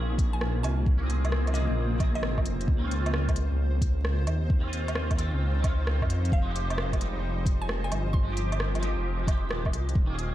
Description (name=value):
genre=future garage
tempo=132 BPM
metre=4/4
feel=swing 67% on 16ths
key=F minor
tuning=A4 = 444 Hz
part: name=twangy electric guitar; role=accompaniment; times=0.0-10.3 s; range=Db3 to Ab4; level=-37 LUFS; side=right 2 dB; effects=ensemble chorus, sidechain pumping, ping-pong delay
part: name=granular cloud pad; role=sustained chords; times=0.0-10.3 s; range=Bb3 to F5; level=-35 LUFS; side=left 1 dB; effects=built-in reverb, sidechain pumping
part: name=dark detuned saw bass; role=bass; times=0.0-10.3 s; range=Eb1 to F2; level=-28 LUFS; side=equal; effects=tube saturation, sidechain pumping
part: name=electronic kick drum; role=drums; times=0.2-10.1 s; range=none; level=-26 LUFS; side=equal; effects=none
part: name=organic electronic drum kit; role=drums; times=0.2-10.3 s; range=hi-hat, rim click, woodblock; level=-35 LUFS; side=right 1 dB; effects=none
part: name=mallet-like synth pluck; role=melody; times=0.3-2.5, 6.3-8.5 s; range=Eb5 to C6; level=-40 LUFS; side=right 1 dB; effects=chorus, diffuse ambient delay
room=light reverb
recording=vinyl crackle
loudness=-25 LUFS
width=side -13 dB against mid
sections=0.0-10.3 A section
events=none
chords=0.0 Bbm9; 2.7 Dbmaj9; 6.3 Fm9